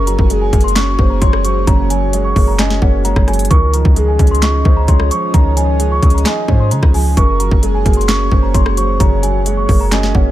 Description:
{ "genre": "hip hop, trap", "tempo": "131 BPM", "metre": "4/4", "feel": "half-time", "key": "unclear", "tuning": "A4 = 444 Hz", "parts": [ { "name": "celesta", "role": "melody", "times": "0.0-10.3 s", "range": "Gb5 to Db6", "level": "-21 LUFS", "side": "right 1 dB", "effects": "low-pass filter, tape echo" }, { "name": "gliding portamento lead", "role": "second line", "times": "0.0-10.3 s", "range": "Ab4 to Eb5", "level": "-23 LUFS", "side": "left 4 dB", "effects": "chorus, tape echo" }, { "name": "dark baby grand piano", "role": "accompaniment", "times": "0.0-10.3 s", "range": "Db3 to Eb4", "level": "-21 LUFS", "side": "right 6 dB", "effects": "low-pass filter" }, { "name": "airy breathy pad", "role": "sustained chords", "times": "0.0-10.3 s", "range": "Bb3 to Eb5", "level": "-25 LUFS", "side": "equal", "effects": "chorus" }, { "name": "clean 808-style bass", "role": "bass", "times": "0.0-10.3 s", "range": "Gb1 to Db3", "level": "-15 LUFS", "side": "equal", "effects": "none" }, { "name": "trap drum kit", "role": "drums", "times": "0.1-10.3 s", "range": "handclaps, hi-hat, kick drum, rim click, snare drum", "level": "-14 LUFS", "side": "equal", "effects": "overdrive" } ], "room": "little or no reverb", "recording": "none", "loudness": "-11 LUFS", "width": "side -14 dB against mid", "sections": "0.0-10.3 A section", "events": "none", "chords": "0.0 Gbadd9; 3.5 Dbadd9; 7.2 Gbadd9" }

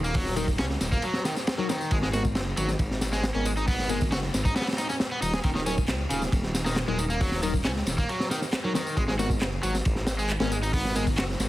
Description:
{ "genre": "breakbeat, breaks", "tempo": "136 BPM", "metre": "4/4", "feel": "straight", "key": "Eb minor", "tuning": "A4 = 440 Hz", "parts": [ { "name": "overdriven semi-hollow guitar", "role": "riff", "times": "0.0-11.2 s", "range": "Db3 to Ab4", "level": "-30 LUFS", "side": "equal", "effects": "ping-pong delay" }, { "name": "dark detuned saw bass", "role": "bass", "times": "0.0-11.5 s", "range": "Eb1 to Db2", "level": "-30 LUFS", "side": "equal", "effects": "tube saturation" }, { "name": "electronic tambourine and handclaps", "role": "drums", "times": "0.0-11.5 s", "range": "none", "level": "-37 LUFS", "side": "equal", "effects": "none" }, { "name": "crunchy breakbeat drum kit", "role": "drums", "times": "0.1-11.5 s", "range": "hi-hat, kick drum, ride cymbal, snare drum", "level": "-28 LUFS", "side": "equal", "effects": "none" }, { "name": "tine electric piano", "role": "stabs", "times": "0.4-11.1 s", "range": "Gb3 to Bb4", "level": "-33 LUFS", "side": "left 3 dB", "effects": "medium stereo tremolo, ping-pong delay" } ], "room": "light reverb, small room ambience", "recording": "heavily compressed radio sound, multiband compression", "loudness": "-24 LUFS", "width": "side -16 dB against mid", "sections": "0.0-11.5 A section", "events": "none", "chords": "0.0 Ebm; 1.9 Abm; 5.4 Ebm; 9.0 Abmadd9" }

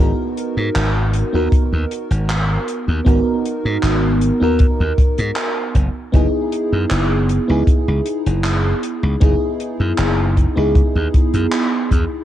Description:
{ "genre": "vaporwave", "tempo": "78 BPM", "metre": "4/4", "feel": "straight", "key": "G# minor", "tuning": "A4 = 440 Hz", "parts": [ { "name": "FM electric piano with soft pad layer", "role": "accompaniment", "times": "0.0-12.2 s", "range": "B3 to A#4", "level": "-19 LUFS", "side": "right 1 dB", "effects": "lush chorus, analog delay" }, { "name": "glassy slap bass", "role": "bass", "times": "0.0-12.0 s", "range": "F#1 to G#2", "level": "-18 LUFS", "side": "equal", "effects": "none" }, { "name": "compact cocktail drum kit", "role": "drums", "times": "0.4-12.1 s", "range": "handclaps, hi-hat", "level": "-25 LUFS", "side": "equal", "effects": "none" }, { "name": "kick drum", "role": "drums", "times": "1.5-12.1 s", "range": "none", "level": "-15 LUFS", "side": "equal", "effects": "none" } ], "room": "small room reverb", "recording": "echo-heavy mix", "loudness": "-15 LUFS", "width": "side -12 dB against mid", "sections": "0.0-12.2 A section", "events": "none", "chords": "0.0 G#m7; 5.8 F#13sus4" }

